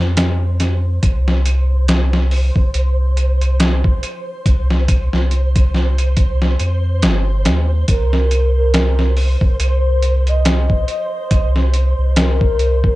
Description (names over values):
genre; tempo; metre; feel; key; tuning
trip hop; 70 BPM; 4/4; swing 57% on 16ths; C minor; A4 = 440 Hz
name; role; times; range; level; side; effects
warm sub bass; bass; 0.0-13.0 s; G1 to F2; -15 LUFS; equal; none
flickering grainy texture; texture; 0.0-13.0 s; C5; -28 LUFS; right 1 dB; built-in reverb
trip hop sampler-style drum kit; drums; 0.2-13.0 s; hi-hat, kick drum, snare drum; -17 LUFS; equal; overdrive
pure breathy sine lead; melody; 7.9-13.0 s; Bb4 to Eb5; -22 LUFS; equal; wide subtle chorus, tape echo
room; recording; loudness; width
little or no reverb; dark, warm production, nothing above 10.8 kHz; -13 LUFS; side -18 dB against mid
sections
0.0-13.0 A section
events
none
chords
none